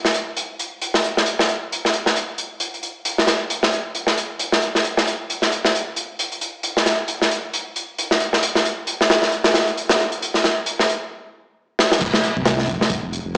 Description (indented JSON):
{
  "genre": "breakbeat, breaks",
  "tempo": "134 BPM",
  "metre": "4/4",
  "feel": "swing 57% on 16ths",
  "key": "unclear",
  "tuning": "A4 = 440 Hz",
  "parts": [
    { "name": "crunchy breakbeat drum kit", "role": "drums", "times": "0.0-13.4 s", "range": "crash cymbal, hi-hat, kick drum, snare drum", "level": "-18 LUFS", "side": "equal", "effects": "high-pass filter on kick, high-pass filter on hats, high-pass filter on cymbals, high-pass filter on snare, high-pass filter on room" },
    { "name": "dark detuned saw bass", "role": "bass", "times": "12.0-13.4 s", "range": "F1 to C2", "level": "-27 LUFS", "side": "equal", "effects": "none" }
  ],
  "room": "wet studio reverb, RT60 0.6 s",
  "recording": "played on a big sound system in a bare room, large studio reverb, small speaker sound",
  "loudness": "-18 LUFS",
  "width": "side -27 dB against mid",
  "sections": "0.0-12.0 A section; 12.0-13.4 B section",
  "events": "drum fill 11.8; drop 12.0-13.4",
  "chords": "none",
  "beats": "0.37 0.81 | 1.26 1.71 2.16 2.61 | 3.05 3.50 3.95 4.40 | 4.84 5.29 5.74 6.19 | 6.64 7.08 7.53 7.98 | 8.43 8.88 9.32 9.77 | 10.22 10.67 11.11 11.56 | 12.01 12.46 12.90 13.35"
}